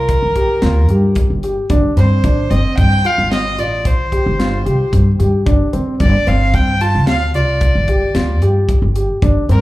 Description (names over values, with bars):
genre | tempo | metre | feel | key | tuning
progressive instrumental, band music in an uneven meter | 112 BPM | 7/4 | straight | G minor | A4 = 440 Hz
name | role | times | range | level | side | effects
warm violin | melody | 0.0-9.6 s | Bb4 to A5 | -19 LUFS | right 1 dB | slapback echo
dark grand piano | arpeggios | 0.0-9.6 s | C4 to G4 | -20 LUFS | equal | none
upright bass | bass | 0.0-9.6 s | G1 to G2 | -15 LUFS | equal | none
crisp fusion drum kit | drums | 0.1-9.6 s | hi-hat, kick drum, snare drum | -18 LUFS | equal | none
room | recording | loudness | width
little or no reverb | live gig heard through the venue's PA, club reverb | -12 LUFS | side -17 dB against mid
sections
0.0-9.6 A section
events
none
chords
0.0 Gm7; 1.7 F/G; 5.5 G5